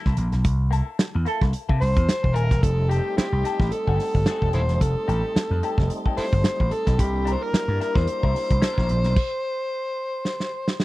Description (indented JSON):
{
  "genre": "funk",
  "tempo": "110 BPM",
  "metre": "4/4",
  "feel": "swing 56% on 16ths",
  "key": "unclear",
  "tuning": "A4 = 442 Hz",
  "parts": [
    { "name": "clean electric guitar", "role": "accompaniment", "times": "0.0-9.1 s", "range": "Bb3 to Bb4", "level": "-34 LUFS", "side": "left 9 dB", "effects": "wah, spring reverb" },
    { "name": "vintage slap bass", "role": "bass", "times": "0.1-9.1 s", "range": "Eb1 to C3", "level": "-22 LUFS", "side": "equal", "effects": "none" },
    { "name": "warm soul drum kit", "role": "drums", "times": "0.1-10.8 s", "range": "crash cymbal, hi-hat, kick drum, snare drum", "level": "-23 LUFS", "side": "equal", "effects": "none" },
    { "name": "bright trombone", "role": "second line", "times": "1.3-1.4 s", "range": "A4", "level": "-27 LUFS", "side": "right 13 dB", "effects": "none" },
    { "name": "overdriven harmonica", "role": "melody", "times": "1.8-10.8 s", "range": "C4 to C5", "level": "-26 LUFS", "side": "equal", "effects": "tape echo" },
    { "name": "tonewheel organ", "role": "sustained chords", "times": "2.6-9.1 s", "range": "G3 to E4", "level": "-34 LUFS", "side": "equal", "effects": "overdrive, chorus vibrato, slow rotary speaker" }
  ],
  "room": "small room ambience",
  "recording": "dry, close 1970s-style studio recording",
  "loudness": "-20 LUFS",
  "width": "side -18 dB against mid",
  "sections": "0.0-2.6 A section; 2.6-10.8 B section",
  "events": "stop 9.2-10.8; drum fill 10.2-10.8",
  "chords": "0.0 C6; 2.6 F9; 7.0 C9",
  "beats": "| 0.45 0.99 1.54 2.08 | 2.63 3.17 3.72 4.26 | 4.81 5.35 5.90 6.44 | 6.99 7.53 8.07 8.62 | 9.16 9.71 10.25 10.79"
}